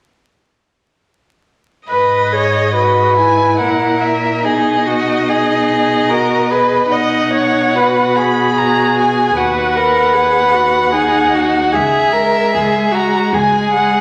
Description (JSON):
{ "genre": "classical, slow romantic movement for string quartet", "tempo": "69-78 BPM", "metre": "3/4", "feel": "rubato", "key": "G# minor", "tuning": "A4 = 440 Hz", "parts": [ { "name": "rich violin", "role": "melody", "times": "1.9-14.0 s", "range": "D#5 to B5", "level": "-21 LUFS", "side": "equal", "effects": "none" }, { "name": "warm violin", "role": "second line", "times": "1.9-14.0 s", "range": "F#4 to D#5", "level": "-16 LUFS", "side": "equal", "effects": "none" }, { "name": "rich viola", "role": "accompaniment", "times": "1.9-14.0 s", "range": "G#3 to B4", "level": "-21 LUFS", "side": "equal", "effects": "none" }, { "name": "rich cello", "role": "bass", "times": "1.9-14.0 s", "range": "C#2 to B2", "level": "-24 LUFS", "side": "equal", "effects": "none" } ], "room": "wet recital hall reverb, RT60 1.4 s", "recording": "vinyl crackle", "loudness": "-14 LUFS", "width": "mono", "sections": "1.9-14.0 A section", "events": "none", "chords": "1.9 G#m; 4.4 G#m/B; 6.9 B; 9.4 B/D#; 11.7 C#m" }